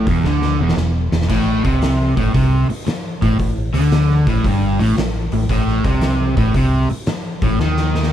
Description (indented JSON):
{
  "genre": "blues rock power trio and southern rock",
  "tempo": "114 BPM",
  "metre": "4/4",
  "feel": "swing 67% on 8ths",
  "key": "unclear",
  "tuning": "A4 = 441 Hz",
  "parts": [
    { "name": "overdriven semi-hollow guitar", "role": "riff", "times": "0.0-8.1 s", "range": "E2 to D#3", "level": "-17 LUFS", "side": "equal", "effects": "none" },
    { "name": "vintage muted fingered electric bass", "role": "bass", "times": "0.0-8.1 s", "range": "E1 to D#2", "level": "-20 LUFS", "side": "equal", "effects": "none" },
    { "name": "oversized low-tuned drum kit", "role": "drums", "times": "0.1-8.1 s", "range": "crash cymbal, hi-hat, kick drum, snare drum", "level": "-21 LUFS", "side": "equal", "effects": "none" }
  ],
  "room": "little or no reverb",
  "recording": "none",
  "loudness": "-14 LUFS",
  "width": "side -10 dB against mid",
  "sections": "0.0-8.1 A section",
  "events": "drum fill 0.2-1.3, 7.6-8.1",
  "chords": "0.0 N.C.; 1.3 A5"
}